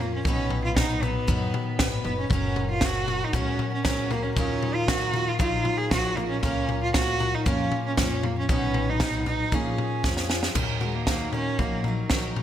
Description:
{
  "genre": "indie folk with a building arrangement",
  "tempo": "116 BPM",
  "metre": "4/4",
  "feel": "straight",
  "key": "Eb minor",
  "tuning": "A4 = 440 Hz",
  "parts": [
    { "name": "rich cello", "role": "melody", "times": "0.0-12.4 s", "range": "Gb3 to Ab4", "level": "-28 LUFS", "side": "right 3 dB", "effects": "digital delay" },
    { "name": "picked steel-string acoustic guitar", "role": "accompaniment", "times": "0.0-12.4 s", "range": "B2 to B4", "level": "-32 LUFS", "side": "left 1 dB", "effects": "lush chorus" },
    { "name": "upright bass", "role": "bass", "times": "0.0-12.4 s", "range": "F#1 to F#2", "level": "-32 LUFS", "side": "equal", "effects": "none" },
    { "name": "compact cocktail drum kit", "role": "drums", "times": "0.2-12.4 s", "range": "crash cymbal, kick drum, snare drum, toms", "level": "-26 LUFS", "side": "left 1 dB", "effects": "gated reverb" },
    { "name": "fingerpicked plugged-in steel-string acoustic guitar", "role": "accompaniment", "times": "10.6-12.4 s", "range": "Eb2 to Gb4", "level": "-38 LUFS", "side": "right 1 dB", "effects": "none" }
  ],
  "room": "light reverb",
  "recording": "bright 1980s-style digital production",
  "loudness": "-23 LUFS",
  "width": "side -10 dB against mid",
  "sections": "0.0-10.6 A section; 10.6-12.4 B section",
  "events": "drum fill 10.0-10.6",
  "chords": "0.3 B; 2.3 Gb; 4.4 Ebmadd9; 6.4 Bbm/Db; 8.5 B; 9.5 Bbm7; 10.6 Ebm7"
}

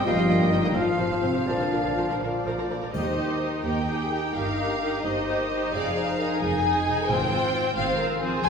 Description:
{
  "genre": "classical, dramatic, fast romantic movement for symphony orchestra",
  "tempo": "79-90 BPM (dotted quarters)",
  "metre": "6/8",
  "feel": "rubato",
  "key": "Eb major",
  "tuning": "A4 = 440 Hz",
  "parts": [
    { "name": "warm symphonic violin section", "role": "melody", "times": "0.0-8.5 s", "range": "D5 to Ab5", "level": "-29 LUFS", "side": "left 2 dB", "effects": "none" },
    { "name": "bright concert flute", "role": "second line", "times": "0.0-2.2 s", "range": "C5 to F5", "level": "-33 LUFS", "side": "left 1 dB", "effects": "none" },
    { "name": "dark clarinet", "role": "second line", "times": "0.0-2.2 s", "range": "C4 to F4", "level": "-30 LUFS", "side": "left 3 dB", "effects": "none" },
    { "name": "warm oboe", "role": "second line", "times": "0.0-2.7 s", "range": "Eb5 to F5", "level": "-33 LUFS", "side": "left 2 dB", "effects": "none" },
    { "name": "dark bassoon", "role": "accompaniment", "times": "0.0-2.7 s", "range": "F3 to G3", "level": "-32 LUFS", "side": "right 2 dB", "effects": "none" },
    { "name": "mellow French horn section", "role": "sustained chords", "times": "0.0-2.7 s", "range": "F3 to F4", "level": "-31 LUFS", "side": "left 3 dB", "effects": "none" },
    { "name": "concert harp", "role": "arpeggios", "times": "0.0-8.5 s", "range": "F2 to F5", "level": "-34 LUFS", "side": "left 4 dB", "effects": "none" },
    { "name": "rich symphonic cello section", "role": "bass", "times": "0.0-8.5 s", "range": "D2 to F3", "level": "-31 LUFS", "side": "right 1 dB", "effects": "none" },
    { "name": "warm symphonic violin section", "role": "second line", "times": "0.1-8.5 s", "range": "G4 to Eb5", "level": "-32 LUFS", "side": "left 2 dB", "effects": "none" },
    { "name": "rich symphonic viola section", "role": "accompaniment", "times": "0.1-8.5 s", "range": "F3 to Ab4", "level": "-29 LUFS", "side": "right 2 dB", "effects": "none" },
    { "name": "rich symphonic double bass section", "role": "bass", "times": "0.1-8.5 s", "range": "F1 to Eb2", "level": "-34 LUFS", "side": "right 3 dB", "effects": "none" },
    { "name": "timpani", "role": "percussion", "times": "2.9-3.6 s", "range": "Eb3", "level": "-36 LUFS", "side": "right 1 dB", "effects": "none" },
    { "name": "triangle", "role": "percussion", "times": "2.9-3.8 s", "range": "none", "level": "-57 LUFS", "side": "left 2 dB", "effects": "none" }
  ],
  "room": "wet recital hall reverb, RT60 1.4 s",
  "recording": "recorded in a church or concert hall",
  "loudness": "-22 LUFS",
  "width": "side -6 dB against mid",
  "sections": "0.0-2.9 A section; 2.9-8.5 B section",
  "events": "none",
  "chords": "0.1 Eb/G; 0.8 Fm/Ab; 1.5 Bb; 2.9 Eb; 4.3 Eb/G; 5.7 Fm7; 7.1 Fm/Ab"
}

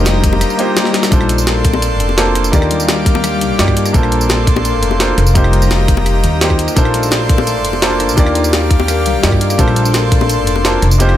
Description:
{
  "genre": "liquid drum and bass",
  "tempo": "170 BPM",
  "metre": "4/4",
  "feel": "straight",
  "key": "Bb major",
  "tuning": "A4 = 439 Hz",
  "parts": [
    { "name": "warm grand piano", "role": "accompaniment", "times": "0.0-11.2 s", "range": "Eb3 to D5", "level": "-18 LUFS", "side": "right 2 dB", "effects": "ping-pong delay" },
    { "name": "airy breathy pad", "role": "sustained chords", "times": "0.0-11.2 s", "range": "G4 to D6", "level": "-20 LUFS", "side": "right 1 dB", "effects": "chorus" },
    { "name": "concert harp", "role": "arpeggios", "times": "0.0-11.2 s", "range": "G3 to Eb4", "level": "-20 LUFS", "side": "left 9 dB", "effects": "dub echo" },
    { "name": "upright bass", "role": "bass", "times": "0.0-11.2 s", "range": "F1 to G2", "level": "-15 LUFS", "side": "equal", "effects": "none" },
    { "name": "jungle sampler-style drum kit", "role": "drums", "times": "0.1-11.2 s", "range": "hi-hat, rim click, snare drum, tambourine", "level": "-18 LUFS", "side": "equal", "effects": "small room reverb" },
    { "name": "bongos", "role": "percussion", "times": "0.1-11.1 s", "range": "none", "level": "-23 LUFS", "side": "left 6 dB", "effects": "none" },
    { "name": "electronic kick drum", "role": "drums", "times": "0.2-10.2 s", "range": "none", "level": "-13 LUFS", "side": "equal", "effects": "small room reverb" },
    { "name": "swell", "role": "sound effects", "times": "0.6-1.1 s", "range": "none", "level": "-25 LUFS", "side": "left 2 dB", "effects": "none" }
  ],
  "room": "small room ambience",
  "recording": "none",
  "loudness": "-10 LUFS",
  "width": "side -12 dB against mid",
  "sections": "0.0-11.2 A section",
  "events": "drum fill 0.9; kick drops out 11.0",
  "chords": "0.0 F9sus4; 1.1 Bbmaj9; 2.5 Ebmaj9; 3.9 Bbmaj9; 5.2 F9sus4; 6.8 Bbmaj9; 8.2 Ebmaj9; 9.6 Bbmaj9"
}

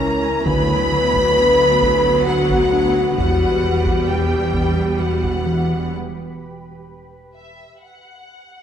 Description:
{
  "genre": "cinematic, suspense film score",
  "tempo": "63-67 BPM",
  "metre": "3/4",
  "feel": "straight",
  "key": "unclear",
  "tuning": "A4 = 440 Hz",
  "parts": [
    { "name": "rich symphonic violin section", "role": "melody", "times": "0.0-8.6 s", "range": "E5 to B5", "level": "-28 LUFS", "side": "left 2 dB", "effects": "none" },
    { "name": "warm symphonic violin section", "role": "second line", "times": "0.0-5.9 s", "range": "F#5 to B5", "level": "-25 LUFS", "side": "equal", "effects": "none" },
    { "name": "rich studio viola section", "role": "accompaniment", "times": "0.0-5.9 s", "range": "E3 to C#4", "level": "-26 LUFS", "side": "right 2 dB", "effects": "none" },
    { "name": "mellow French horn section", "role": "sustained chords", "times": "0.0-5.9 s", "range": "F#4 to B4", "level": "-18 LUFS", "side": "left 2 dB", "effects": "none" },
    { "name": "shimmering ambient pad", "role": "sustained chords", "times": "0.0-5.9 s", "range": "E4 to B5", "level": "-31 LUFS", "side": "equal", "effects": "chorus, built-in reverb" },
    { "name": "smooth synth bass", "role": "riff", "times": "0.0-5.7 s", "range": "E2 to D4", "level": "-24 LUFS", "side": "left 1 dB", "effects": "none" },
    { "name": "rich symphonic cello section", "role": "bass", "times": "0.0-5.9 s", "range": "C#2 to E2", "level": "-27 LUFS", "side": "right 2 dB", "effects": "none" },
    { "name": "rich symphonic double bass section", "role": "bass", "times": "0.0-5.9 s", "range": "E1 to D2", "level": "-27 LUFS", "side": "right 4 dB", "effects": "none" },
    { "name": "taiko ensemble", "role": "drums", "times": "0.5-5.9 s", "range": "none", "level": "-28 LUFS", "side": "right 1 dB", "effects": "none" }
  ],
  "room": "wet concert hall reverb, RT60 1.9 s",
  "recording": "none",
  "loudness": "-15 LUFS",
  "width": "side -9 dB against mid",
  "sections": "0.0-8.6 A section",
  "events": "break 5.9-8.6",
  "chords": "0.5 Bm/D; 3.2 Emadd9; 5.9 N.C."
}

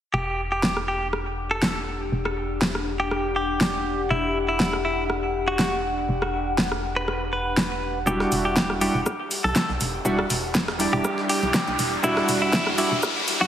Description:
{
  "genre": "deep house",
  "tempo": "121 BPM",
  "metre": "4/4",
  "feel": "swing 53% on 16ths",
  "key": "E minor",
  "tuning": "A4 = 441 Hz",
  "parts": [
    { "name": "direct-recorded clean electric guitar", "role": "melody", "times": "0.1-13.5 s", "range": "E4 to B4", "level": "-26 LUFS", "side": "equal", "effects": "spring reverb, low-pass filter, digital delay" },
    { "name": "organ-like FM bass", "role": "bass", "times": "0.1-13.5 s", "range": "E1 to B1", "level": "-31 LUFS", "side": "equal", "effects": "sidechain pumping" },
    { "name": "warbly tape-like pad", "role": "texture", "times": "1.0-13.5 s", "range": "D4 to F#5", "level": "-30 LUFS", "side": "left 3 dB", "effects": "chorus, built-in reverb, phaser, sidechain pumping" },
    { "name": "deep house drum kit", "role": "drums", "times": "0.6-13.4 s", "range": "hi-hat, rim click, snare drum", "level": "-26 LUFS", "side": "equal", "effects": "none" },
    { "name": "warm analog keys", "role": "stabs", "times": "8.1-12.9 s", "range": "G3 to G4", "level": "-26 LUFS", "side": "right 1 dB", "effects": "chorus, sidechain pumping, low-pass filter, ping-pong delay" },
    { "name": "breakbeat sampler-style drum kit", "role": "drums", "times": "8.1-13.4 s", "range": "hi-hat, shaker, snare drum", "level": "-35 LUFS", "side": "left 1 dB", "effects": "sidechain pumping on perc, high-pass filter on perc, high-pass filter on snare, sidechain pumping on hats, high-pass filter on hats" },
    { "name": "electronic kick drum", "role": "drums", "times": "8.1-13.1 s", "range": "none", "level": "-31 LUFS", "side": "equal", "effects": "none" },
    { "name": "riser", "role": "sound effects", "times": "9.3-13.5 s", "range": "none", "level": "-30 LUFS", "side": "equal", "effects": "none" }
  ],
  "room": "moderate lush hall reverb, RT60 1.8 s",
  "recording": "heavily compressed radio sound, high-pass filter",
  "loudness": "-21 LUFS",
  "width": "side -10 dB against mid",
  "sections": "0.1-8.1 A section; 8.1-13.5 B section",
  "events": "build-up 8.1-13.5; filter sweep 8.1-13.5; riser 9.3-13.5",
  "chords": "0.1 Em9"
}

